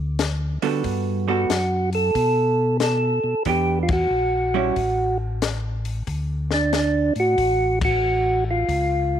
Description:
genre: soul jazz organ trio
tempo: 92 BPM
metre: 4/4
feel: swing 66% on 8ths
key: D major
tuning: A4 = 440 Hz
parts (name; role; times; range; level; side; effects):
- mellow tonewheel organ; bass; 0.0-9.2 s; A1 to D3; -25 LUFS; left 1 dB; chorus vibrato, stopped rotary speaker
- compact cocktail drum kit; drums; 0.2-8.9 s; hi-hat, kick drum, ride cymbal, snare drum; -28 LUFS; left 5 dB; none
- vintage hollow-body jazz guitar; accompaniment; 0.6-4.7 s; E3 to A4; -25 LUFS; right 13 dB; none
- percussive tonewheel organ; melody; 1.3-9.2 s; D4 to A4; -20 LUFS; right 1 dB; slow rotary speaker
room: studio reverb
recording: 1960s-style stereo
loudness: -19 LUFS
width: side -9 dB against mid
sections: 0.0-9.2 A section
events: band accent 3.8-4.1, 7.7-8.0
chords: 0.0 D6; 0.8 Gmaj9; 3.5 Em7; 4.8 N.C.; 6.1 D; 8.7 C#

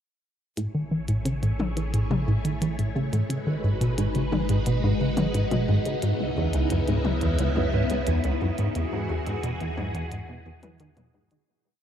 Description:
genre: ambient, sequencer-driven space music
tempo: 88 BPM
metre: 4/4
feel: straight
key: E major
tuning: A4 = 440 Hz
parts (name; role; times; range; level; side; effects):
- phased string machine; sustained chords; 0.6-11.5 s; C#3 to C#5; -29 LUFS; equal; ensemble chorus, phaser
- plucky analog bass; riff; 0.6-11.4 s; C#2 to E3; -25 LUFS; equal; wide subtle chorus, tape echo
- warm sub bass; bass; 0.6-11.4 s; G#1 to E2; -32 LUFS; equal; none
- minimal click drum kit; percussion; 0.6-11.4 s; hi-hat, toms; -34 LUFS; left 4 dB; tape echo
room: moderate cathedral reverb, RT60 4.8 s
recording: in a vast, echoing space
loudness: -23 LUFS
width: side -9 dB against mid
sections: 0.6-11.5 A section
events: fade-in on string machine 0.6-11.5; fade-out 7.8-11.5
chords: 0.6 Amaj7; 3.3 G#m7; 6.0 C#m9; 8.8 Emaj9

